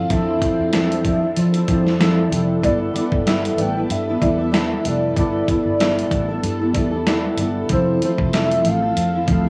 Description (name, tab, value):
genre	indie pop, bedroom pop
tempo	95 BPM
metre	4/4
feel	swing 55% on 16ths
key	G mixolydian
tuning	A4 = 440 Hz
part	warm velvety synth lead	melody	0.0-9.5 s	C5 to G5	-26 LUFS	equal	subtle chorus
part	fingerpicked steel-string acoustic guitar	accompaniment	0.0-9.5 s	F3 to A4	-22 LUFS	equal	subtle chorus, vibrato effect, cassette tape
part	phased string machine	sustained chords	0.0-9.5 s	F3 to B4	-32 LUFS	equal	ensemble chorus, phaser, cassette tape
part	vintage muted fingered electric bass	bass	0.0-9.5 s	F1 to F3	-26 LUFS	equal	none
part	dusty soul sampler-style drum kit	drums	0.1-9.4 s	hi-hat, kick drum, snare drum	-25 LUFS	equal	cassette tape
room	moderate booth ambience, RT60 0.3 s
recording	home recording on cassette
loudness	-19 LUFS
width	mono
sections	0.0-9.5 A section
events	none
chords	0.0 Fmaj7; 2.6 G69; 7.7 Fmaj7